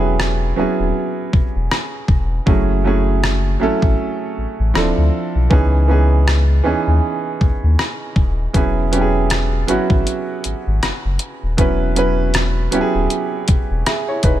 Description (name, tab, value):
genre	contemporary R&B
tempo	79 BPM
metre	4/4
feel	swing 58% on 16ths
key	E major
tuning	A4 = 440 Hz
part	clear concert grand piano	accompaniment	0.0-14.4 s	E3 to E5	-19 LUFS	right 3 dB	none
part	sub bass with octave	bass	0.0-14.4 s	D1 to D#2	-17 LUFS	left 1 dB	none
part	detuned 8-bit digital drum machine	drums	0.2-14.4 s	hi-hat, kick drum, rim click	-18 LUFS	left 1 dB	none
room	little or no reverb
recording	none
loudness	-15 LUFS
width	side -12 dB against mid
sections	0.0-14.4 A section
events	none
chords	0.0 E6; 2.5 F#m7; 4.7 Dm9; 5.5 C#m9; 8.5 E6